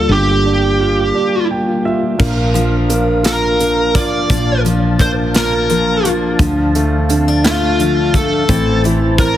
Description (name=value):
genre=six-eight pop ballad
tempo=57 BPM (dotted quarters)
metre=6/8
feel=straight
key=unclear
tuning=A4 = 440 Hz
part: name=bluesy overdriven lead guitar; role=melody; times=0.0-9.4 s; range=F4 to D5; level=-17 LUFS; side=equal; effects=distortion, tape echo
part: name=warm grand piano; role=accompaniment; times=0.0-9.4 s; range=D3 to G5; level=-19 LUFS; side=right 3 dB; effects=none
part: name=percussive tonewheel organ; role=sustained chords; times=0.0-9.4 s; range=G3 to A5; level=-20 LUFS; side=left 1 dB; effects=chorus vibrato, slow rotary speaker
part: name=woody fretless electric bass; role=bass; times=0.0-9.4 s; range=G1 to D2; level=-18 LUFS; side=equal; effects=none
part: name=picked steel-string acoustic guitar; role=arpeggios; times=2.2-9.4 s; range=E3 to D4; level=-22 LUFS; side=left 6 dB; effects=none
part: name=modern studio drum kit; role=drums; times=2.2-9.3 s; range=crash cymbal, hi-hat, kick drum, snare drum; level=-18 LUFS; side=equal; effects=none
room=light reverb, studio ambience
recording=heavily compressed radio sound, multiband compression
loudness=-12 LUFS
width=side -12 dB against mid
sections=0.0-2.2 A section; 2.2-9.4 B section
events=break 1.2-2.2; grand piano fill 1.2-2.2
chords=0.0 Gm7; 2.2 Bb; 6.4 Dm; 8.5 Am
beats=| 0.10 1.15 | 2.20 3.25 | 4.30 5.34 | 6.39 7.44 | 8.49